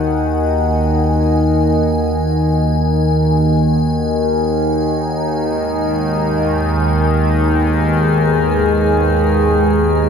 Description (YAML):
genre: ambient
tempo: free time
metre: none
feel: none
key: Eb minor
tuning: A4 = 439 Hz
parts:
  - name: dark analog pad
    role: sustained chords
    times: 0.0-10.1 s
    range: Ab3 to Gb5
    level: -21 LUFS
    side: equal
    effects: chorus
  - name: analog drone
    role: drone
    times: 0.0-10.1 s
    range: Eb2 to Eb3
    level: -14 LUFS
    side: equal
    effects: chorus
  - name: icy glass pad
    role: texture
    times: 0.0-10.1 s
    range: Ab5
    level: -25 LUFS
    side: left 1 dB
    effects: chorus, built-in reverb
room: wet cathedral reverb, RT60 5.2 s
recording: none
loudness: -13 LUFS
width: side -6 dB against mid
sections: 0.0-10.1 A section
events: none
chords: 0.0 Ebm; 5.3 Abm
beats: free time